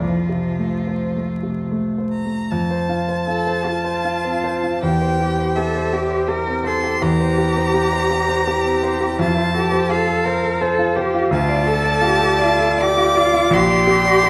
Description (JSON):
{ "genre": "classical, slow romantic movement for piano trio", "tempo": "70-86 BPM", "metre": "3/4", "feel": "rubato", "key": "F major", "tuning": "A4 = 436 Hz", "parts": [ { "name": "clear violin", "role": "melody", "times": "0.0-14.3 s", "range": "F4 to D6", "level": "-24 LUFS", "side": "equal", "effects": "none" }, { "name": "rich cello", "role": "second line", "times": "0.0-14.3 s", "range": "F3 to Bb4", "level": "-24 LUFS", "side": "equal", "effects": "none" }, { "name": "clear concert grand piano", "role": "accompaniment", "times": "0.0-14.3 s", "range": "Bb1 to D5", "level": "-21 LUFS", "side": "equal", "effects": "none" } ], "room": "wet recital hall reverb, RT60 1.5 s", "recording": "vinyl crackle", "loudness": "-19 LUFS", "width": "mono", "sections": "0.0-2.5 A section; 2.5-14.3 B section", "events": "none", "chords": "0.0 F; 4.8 C/E; 9.2 F; 11.3 Dm; 13.5 Gm/Bb" }